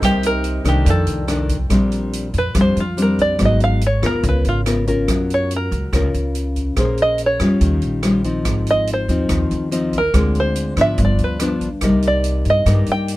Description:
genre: bossa nova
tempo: 142 BPM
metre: 4/4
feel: straight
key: unclear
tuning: A4 = 441 Hz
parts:
  - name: open-back banjo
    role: melody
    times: 0.0-13.1 s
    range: F4 to G5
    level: -20 LUFS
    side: right 1 dB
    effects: none
  - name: clear concert grand piano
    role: accompaniment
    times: 0.0-1.7 s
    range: Eb4 to G5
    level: -29 LUFS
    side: right 5 dB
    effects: none
  - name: nylon-string guitar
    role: accompaniment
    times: 0.0-13.2 s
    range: F2 to C5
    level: -20 LUFS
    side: left 2 dB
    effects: none
  - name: upright bass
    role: bass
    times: 0.0-13.2 s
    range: G1 to Ab2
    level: -20 LUFS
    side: equal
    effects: none
  - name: swinging big-band drum kit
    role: drums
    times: 0.0-13.2 s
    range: hi-hat, kick drum, rim click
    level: -25 LUFS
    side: right 1 dB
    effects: none
room: little or no reverb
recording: none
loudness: -15 LUFS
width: side -17 dB against mid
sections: 0.0-1.7 A section; 1.7-13.2 B section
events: five-string banjo solo 1.7-13.2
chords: 0.0 Cm7; 0.9 F13; 1.7 Bb69; 3.4 Abm7; 4.2 Db6; 5.1 Gbmaj7; 6.8 Bbm9; 7.6 Eb9; 8.5 Ab6; 10.1 Dm7b5; 11.0 G7; 11.8 Cm7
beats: | 0.02 0.44 0.87 1.29 | 1.71 2.13 2.55 2.98 | 3.40 3.82 4.24 4.66 | 5.08 5.51 5.93 6.35 | 6.77 7.19 7.61 8.04 | 8.46 8.88 9.30 9.72 | 10.14 10.56 10.99 11.41 | 11.83 12.25 12.67 13.09

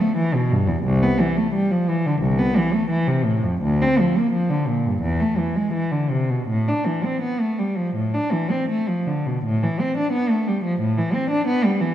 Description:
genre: classical, baroque-style suite movement for unaccompanied cello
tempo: 77-91 BPM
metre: 4/4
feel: rubato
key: A minor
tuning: A4 = 440 Hz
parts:
  - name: warm cello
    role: solo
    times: 0.0-11.9 s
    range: C2 to D4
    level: -19 LUFS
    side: equal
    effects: none
room: wet scoring stage reverb, RT60 1.5 s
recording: heard from further back in the room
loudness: -19 LUFS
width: side -11 dB against mid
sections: 0.0-9.4 A section; 9.4-11.9 B section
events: none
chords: none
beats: 0.18 | 0.85 1.53 2.21 2.89 | 3.61 4.33 5.02 5.74 | 6.48 7.21 7.94 8.68 | 9.44 10.14 10.81 11.47

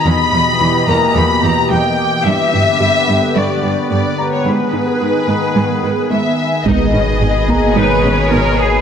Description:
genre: cinematic, hybrid orchestral and electronic film score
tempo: 109 BPM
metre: 4/4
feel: straight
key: G# harmonic minor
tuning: A4 = 439 Hz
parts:
  - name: warm symphonic violin section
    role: melody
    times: 0.0-8.8 s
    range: B4 to B5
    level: -16 LUFS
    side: left 3 dB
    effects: none
  - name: lush unison pad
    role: sustained chords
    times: 0.0-8.8 s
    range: B2 to D#5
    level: -18 LUFS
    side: equal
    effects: chorus, phaser
  - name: resonant blip pluck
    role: arpeggios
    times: 0.1-8.5 s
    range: E3 to G#4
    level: -23 LUFS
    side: right 3 dB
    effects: none
  - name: rich symphonic cello section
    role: bass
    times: 0.1-8.8 s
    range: E2 to B4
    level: -18 LUFS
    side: right 2 dB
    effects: none
  - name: warm grand piano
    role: texture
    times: 0.9-8.8 s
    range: A#3 to C#6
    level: -24 LUFS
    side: left 2 dB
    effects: digital delay
  - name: rich symphonic violin section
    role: second line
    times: 6.7-8.8 s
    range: G#4 to B4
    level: -23 LUFS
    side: left 2 dB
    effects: none
  - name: rich symphonic viola section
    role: accompaniment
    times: 6.7-8.4 s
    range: B3 to D#4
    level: -22 LUFS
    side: right 2 dB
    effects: none
  - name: warm French horn section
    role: sustained chords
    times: 6.7-8.8 s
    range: B2 to G#4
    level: -23 LUFS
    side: left 2 dB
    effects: none
  - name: rich symphonic double bass section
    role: bass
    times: 6.7-8.4 s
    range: G#1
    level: -22 LUFS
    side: right 2 dB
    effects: none
  - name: warm sub bass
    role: bass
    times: 6.7-8.8 s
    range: G#1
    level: -19 LUFS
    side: equal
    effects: none
  - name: taiko ensemble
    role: drums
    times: 6.7-7.7 s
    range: none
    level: -23 LUFS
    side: equal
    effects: none
room: wet scoring stage reverb, RT60 1.5 s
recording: none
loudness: -12 LUFS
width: side -8 dB against mid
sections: 0.0-6.7 A section; 6.7-8.8 A section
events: none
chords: 0.1 Em; 2.3 G; 4.5 G#m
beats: | 0.05 0.60 1.16 1.71 | 2.26 2.81 3.36 3.91 | 4.46 5.01 5.56 6.11 | 6.66 7.21 7.76 8.31

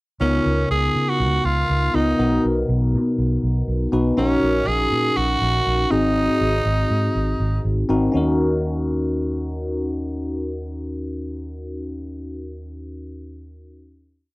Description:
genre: 1980s-style pop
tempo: 121 BPM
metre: 4/4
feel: swing 55% on 16ths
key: Eb minor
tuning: A4 = 441 Hz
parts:
  - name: raspy tenor saxophone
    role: melody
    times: 0.2-7.6 s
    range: Db4 to Ab4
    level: -22 LUFS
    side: right 1 dB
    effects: slapback echo
  - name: bell-like tine electric piano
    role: accompaniment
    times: 0.2-14.3 s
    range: Eb2 to B4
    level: -22 LUFS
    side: left 1 dB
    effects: phaser
  - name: vintage muted fingered electric bass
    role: bass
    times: 0.2-11.8 s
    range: Ab1 to Db3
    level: -23 LUFS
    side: right 1 dB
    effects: none
room: little or no reverb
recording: dry, close 1970s-style studio recording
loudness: -18 LUFS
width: side -22 dB against mid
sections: 0.2-8.1 pre-chorus; 8.1-12.1 final chord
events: none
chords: 0.2 Db13; 2.2 Bmaj7; 4.2 Ebm7/Bb; 5.9 Ab7; 8.1 Ebm7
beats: | 0.21 0.70 1.20 1.70 | 2.19 2.69 3.18 3.68 | 4.17 4.67 5.17 5.66 | 6.16 6.66 7.15 7.65 | 8.14 8.64 9.13 9.63 | 10.13 10.62 11.12 11.61

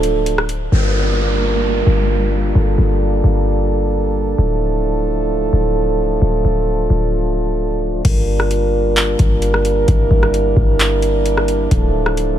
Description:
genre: hip hop, atmospheric cloud-rap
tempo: 131 BPM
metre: 4/4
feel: half-time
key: unclear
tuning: A4 = 440 Hz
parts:
  - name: mellow French horn section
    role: sustained chords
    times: 0.0-12.4 s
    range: F3 to Bb4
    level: -18 LUFS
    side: right 2 dB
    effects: stereo widening, sidechain pumping
  - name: clean 808-style bass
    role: bass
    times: 0.0-12.4 s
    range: D1 to G1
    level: -17 LUFS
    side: left 1 dB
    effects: none
  - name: booming analog drum machine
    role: drums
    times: 0.0-0.6, 8.0-12.3 s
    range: crash cymbal, handclaps, hi-hat, kick drum, rim click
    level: -18 LUFS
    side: left 1 dB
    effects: none
  - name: downlifter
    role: sound effects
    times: 0.7-4.4 s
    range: none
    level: -24 LUFS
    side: right 1 dB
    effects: none
room: digital ambience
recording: none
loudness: -14 LUFS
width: side -11 dB against mid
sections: 0.7-8.1 A section; 8.1-12.4 B section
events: none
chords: 0.0 Dm; 0.7 Gm7; 4.4 Dmadd9; 8.1 Gm7; 11.7 Dmadd9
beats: 0.26 | 0.72 1.18 1.64 2.10 | 2.55 3.01 3.47 3.93 | 4.39 4.84 5.30 5.76 | 6.22 6.68 7.13 7.59 | 8.05 8.51 8.97 9.42 | 9.88 10.34 10.80 11.26 | 11.71 12.17

